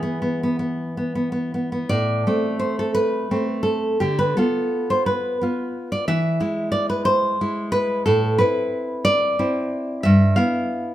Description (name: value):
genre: romantic piece for solo classical guitar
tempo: 59 BPM (dotted quarters)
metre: 6/8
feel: uneven beats, rubato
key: A minor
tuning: A4 = 440 Hz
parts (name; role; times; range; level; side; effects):
- nylon-string guitar; solo; 0.0-10.9 s; G2 to F5; -19 LUFS; equal; none
room: moderate large studio reverb, RT60 1.1 s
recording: band playing live in one room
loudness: -19 LUFS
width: side -13 dB against mid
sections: 0.0-1.9 A section; 1.9-10.9 B section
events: none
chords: 0.0 E; 1.9 Am; 4.0 Bdim/D; 6.1 E; 8.1 Am; 10.1 Em/G